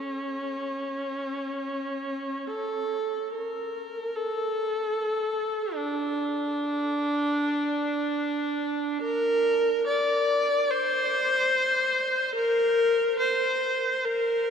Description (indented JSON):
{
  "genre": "classical, free, expressive piece for unaccompanied viola",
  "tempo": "free time",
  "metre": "none",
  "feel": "none",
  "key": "unclear",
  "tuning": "A4 = 438 Hz",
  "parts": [
    { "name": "rich viola", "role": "solo", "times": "0.0-14.5 s", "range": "C#4 to D5", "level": "-24 LUFS", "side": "equal", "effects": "none" }
  ],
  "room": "wet cathedral reverb, RT60 5.1 s",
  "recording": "none",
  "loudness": "-24 LUFS",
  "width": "side -7 dB against mid",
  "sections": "0.0-14.5 A section",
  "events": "none",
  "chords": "none"
}